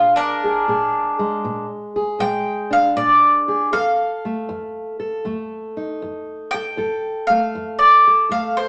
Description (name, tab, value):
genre	acoustic country blues, solo or duo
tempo	79 BPM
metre	4/4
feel	swing 67% on 8ths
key	unclear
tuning	A4 = 440 Hz
part	mandolin	melody	0.0-8.7 s	D4 to G5	-18 LUFS	equal	none
part	fingerpicked steel-string acoustic guitar	accompaniment	0.0-8.7 s	F2 to A4	-27 LUFS	equal	none
room	wet studio reverb, RT60 0.8 s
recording	none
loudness	-19 LUFS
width	mono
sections	0.0-8.7 A section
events	mandolin solo 0.0-8.7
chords	0.0 Bb7; 3.7 F7